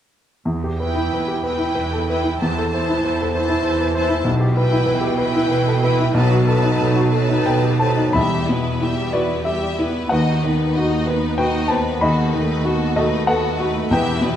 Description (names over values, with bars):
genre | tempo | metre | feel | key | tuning
classical, romantic movement for piano and orchestra | 94 BPM | 3/4 | rubato | E minor | A4 = 439 Hz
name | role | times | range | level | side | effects
clear baby grand piano | melody | 0.5-14.4 s | B1 to B5 | -19 LUFS | left 1 dB | none
rich symphonic cello section | bass | 0.5-14.4 s | D#2 to B2 | -24 LUFS | right 4 dB | none
rich studio violin section | second line | 0.8-14.4 s | D#4 to A5 | -26 LUFS | left 2 dB | none
rich symphonic viola section | accompaniment | 0.8-14.4 s | E3 to E4 | -26 LUFS | right 2 dB | none
bright symphonic violin section | melody | 8.2-14.4 s | A4 to E5 | -29 LUFS | left 4 dB | none
timpani | percussion | 8.2-9.1, 13.9-14.4 s | E2 | -28 LUFS | left 2 dB | none
room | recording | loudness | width
moderate scoring stage reverb, RT60 1.8 s | none | -16 LUFS | side -10 dB against mid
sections
0.5-8.2 A section; 8.2-14.4 B section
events
none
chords
0.5 Em; 4.3 Em/B; 6.1 B7; 8.2 Em; 10.1 B/D#; 12.0 B7/D#